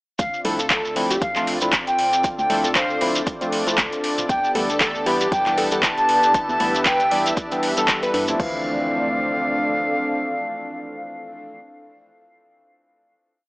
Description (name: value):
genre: deep house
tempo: 117 BPM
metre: 4/4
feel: swing 56% on 16ths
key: D dorian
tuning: A4 = 440 Hz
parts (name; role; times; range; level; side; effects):
- silver concert flute; melody; 0.2-11.6 s; F5 to A5; -22 LUFS; equal; tape echo
- warm analog pad; sustained chords; 0.2-11.6 s; A3 to E5; -28 LUFS; equal; chorus, vintage 12-bit sampler grit, sidechain pumping
- organ-like FM bass; bass; 0.2-9.9 s; D1 to G2; -37 LUFS; equal; sidechain pumping
- deep house drum kit; drums; 0.2-8.5 s; crash cymbal, handclaps, hi-hat; -23 LUFS; equal; overdrive
- electronic kick drum; drums; 0.2-8.5 s; none; -26 LUFS; equal; overdrive
- shekere; percussion; 0.2-8.4 s; none; -28 LUFS; equal; none
- warbly tape-like pad; texture; 1.6-11.8 s; D4 to F5; -30 LUFS; left 1 dB; chorus, built-in reverb, phaser, sidechain pumping
- plucky unison lead; melody; 0.4-8.2 s; G4 to D5; -27 LUFS; equal; tape echo
- percussive organ stab; stabs; 0.4-11.6 s; E3 to A4; -26 LUFS; equal; analog chorus, cassette tape, sidechain pumping, tape echo
- warm studio violin section; texture; 4.3-8.4 s; A4 to A5; -29 LUFS; equal; none
room: moderate plate reverb, RT60 2.2 s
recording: dry, gritty hardware recording, small speaker sound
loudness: -18 LUFS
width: side -23 dB against mid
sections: 0.2-8.4 drop; 8.4-12.5 final chord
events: drop 0.2-8.4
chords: 0.2 Dm9; 4.3 Em7; 8.4 Dm9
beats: | 0.19 0.70 1.22 1.73 | 2.24 2.76 3.27 3.78 | 4.29 4.81 5.32 5.83 | 6.34 6.86 7.37 7.88 | 8.40 8.91 9.42 9.94 | 10.45 10.96 11.47